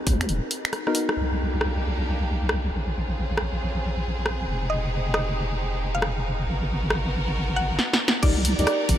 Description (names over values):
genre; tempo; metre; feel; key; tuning
UK garage, two-step garage; 136 BPM; 4/4; swing 64% on 16ths; unclear; A4 = 439 Hz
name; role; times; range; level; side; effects
deep soft wobble bass; bass; 0.1-9.0 s; Eb1 to Eb2; -26 LUFS; equal; chorus
electronic kick drum; drums; 0.1-0.2, 8.2-9.0 s; none; -23 LUFS; equal; none
punchy analog drum machine; drums; 0.1-9.0 s; crash cymbal, finger snaps, hi-hat, rim click, snare drum; -28 LUFS; equal; low-pass filter on hats, low-pass filter on snare, low-pass filter on cymbals
deep mellow chord stab; stabs; 0.9-1.2, 8.2-9.0 s; Cb4 to D5; -30 LUFS; left 1 dB; chorus, ping-pong delay
clear symphonic violin section; sustained chords; 1.2-9.0 s; Bb3 to D5; -32 LUFS; right 1 dB; sidechain pumping
mallet-like synth pluck; melody; 4.7-8.9 s; D5 to Gb5; -31 LUFS; equal; chorus, phaser, analog delay
room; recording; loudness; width
moderate huge ambient reverb, RT60 8.8 s; dreamy mix soaked in reverb; -22 LUFS; side -11 dB against mid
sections
0.0-1.2 A section; 1.2-8.2 B section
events
break 0.3-1.2; drum fill 0.7-1.2, 7.8-8.2; band accent 1.1; filter sweep on drum 1.2-8.2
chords
0.0 Abm9 (rootless); 1.2 Cm9; 2.7 Bbm9; 4.5 Fm9; 6.5 Abm9; 8.2 Cm9